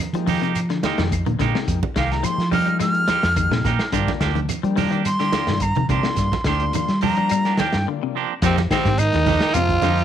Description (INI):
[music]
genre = afrobeat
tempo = 107 BPM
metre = 4/4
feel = straight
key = F dorian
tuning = A4 = 439 Hz
[part]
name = semi-hollow electric guitar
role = arpeggios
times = 0.0-10.0 s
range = C3 to Ab3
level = -28 LUFS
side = left 11 dB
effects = spring reverb
[part]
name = claves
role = percussion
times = 0.0-9.7 s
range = none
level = -35 LUFS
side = left 14 dB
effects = none
[part]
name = combo organ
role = accompaniment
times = 0.1-9.8 s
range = G3 to G4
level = -32 LUFS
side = left 14 dB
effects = none
[part]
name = fingered electric bass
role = bass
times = 0.1-10.0 s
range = C2 to G3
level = -22 LUFS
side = equal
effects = none
[part]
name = vintage drum kit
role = drums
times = 0.1-10.0 s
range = hi-hat, kick drum, snare drum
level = -26 LUFS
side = equal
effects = none
[part]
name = clean electric guitar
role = stabs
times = 0.3-10.0 s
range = F3 to G4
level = -27 LUFS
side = right 13 dB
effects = none
[part]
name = congas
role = percussion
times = 0.3-10.0 s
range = none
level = -28 LUFS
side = right 9 dB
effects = none
[part]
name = shekere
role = percussion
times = 0.3-10.0 s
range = none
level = -32 LUFS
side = right 6 dB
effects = none
[part]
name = breathy bright silver concert flute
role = melody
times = 2.0-7.9 s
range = F5 to F6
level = -23 LUFS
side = equal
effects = none
[part]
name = breathy tenor saxophone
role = melody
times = 8.4-10.0 s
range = C4 to F4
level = -21 LUFS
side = equal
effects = none
[part]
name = growling bass trombone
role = second line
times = 8.5-10.0 s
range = C3 to F3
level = -26 LUFS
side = right 12 dB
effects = none
[sound]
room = light reverb, studio reverb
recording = 1960s-style stereo with parts hard left and right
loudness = -18 LUFS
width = side -10 dB against mid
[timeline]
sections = 0.0-8.4 A section; 8.4-10.0 B section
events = flute solo 0.0-8.4; break 7.9-8.4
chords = 0.0 Fm11; 3.9 Gm7; 8.4 Fm11